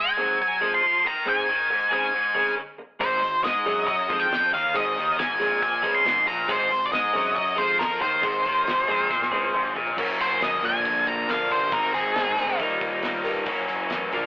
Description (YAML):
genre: indie rock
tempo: 138 BPM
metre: 4/4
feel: straight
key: unclear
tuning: A4 = 440 Hz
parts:
  - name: octave-fuzz lead guitar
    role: melody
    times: 0.0-12.6 s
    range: Ab4 to C6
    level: -22 LUFS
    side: equal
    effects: distortion
  - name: scooped high-gain guitar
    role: riff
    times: 0.0-14.3 s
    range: Gb2 to Eb4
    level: -27 LUFS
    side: left 1 dB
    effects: distortion
  - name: twelve-string electric guitar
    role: riff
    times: 0.2-14.3 s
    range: Ab2 to Bb4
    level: -31 LUFS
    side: right 1 dB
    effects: none
  - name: fuzz picked electric bass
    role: bass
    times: 3.0-14.3 s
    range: Gb1 to Ab2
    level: -33 LUFS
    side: equal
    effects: overdrive
  - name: cloth-damped thuddy drum kit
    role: drums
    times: 3.0-14.2 s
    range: crash cymbal, hi-hat, kick drum, snare drum, toms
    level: -34 LUFS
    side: equal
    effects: none
room: moderate studio reverb, RT60 0.9 s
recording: band playing live in one room, telephone sound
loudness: -20 LUFS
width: side -24 dB against mid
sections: 0.0-10.0 A section; 10.0-14.3 B section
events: drum fill 9.1-10.0; lead electric guitar solo 10.0-14.3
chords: 0.0 Ab; 10.0 Gb; 10.6 Bb; 11.7 Ab; 12.6 Ebadd9; 13.5 Gb